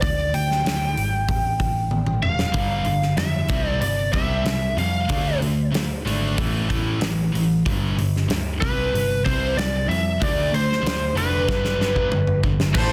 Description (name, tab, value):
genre	hard rock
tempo	94 BPM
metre	4/4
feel	straight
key	unclear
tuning	A4 = 440 Hz
part	biting lead guitar	melody	0.0-12.9 s	B4 to G5	-27 LUFS	equal	overdrive, analog delay
part	hollow-body short-scale picked electric bass	bass	0.0-12.9 s	E1 to F2	-28 LUFS	equal	none
part	huge arena drum kit	drums	0.0-12.9 s	crash cymbal, hi-hat, kick drum, snare drum, toms	-28 LUFS	equal	none
part	overdriven semi-hollow guitar	riff	2.5-12.9 s	G2 to D4	-31 LUFS	equal	none
part	scooped high-gain guitar	riff	2.5-12.9 s	G2 to D4	-29 LUFS	equal	distortion
part	scooped high-gain guitar	riff	12.7-12.9 s	A2 to A3	-31 LUFS	equal	distortion
part	octave-fuzz lead guitar	second line	12.8-12.9 s	A4	-31 LUFS	equal	distortion
room	studio ambience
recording	dense, heavily limited modern master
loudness	-22 LUFS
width	mono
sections	0.0-12.7 A section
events	drum fill 1.9-2.6, 11.5-12.7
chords	0.0 G5; 1.3 A5; 2.6 G5; 3.5 C; 5.1 D5; 6.4 A5; 7.7 G5; 8.6 C5; 10.2 Dm; 11.5 G